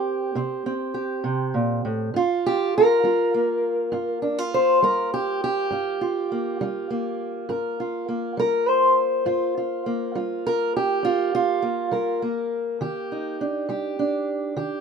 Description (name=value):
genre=acoustic country blues, solo or duo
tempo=68 BPM (dotted quarters)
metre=12/8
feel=straight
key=G minor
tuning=A4 = 441 Hz
part: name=fingerpicked acoustic archtop guitar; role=solo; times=0.0-14.8 s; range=G2 to C5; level=-21 LUFS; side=right 1 dB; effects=none
room=light reverb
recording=minimal, uncompressed stereo recording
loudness=-21 LUFS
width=side -6 dB against mid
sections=0.0-14.8 A section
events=none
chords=0.0 C5; 2.1 Gm7; 12.8 Ebmaj7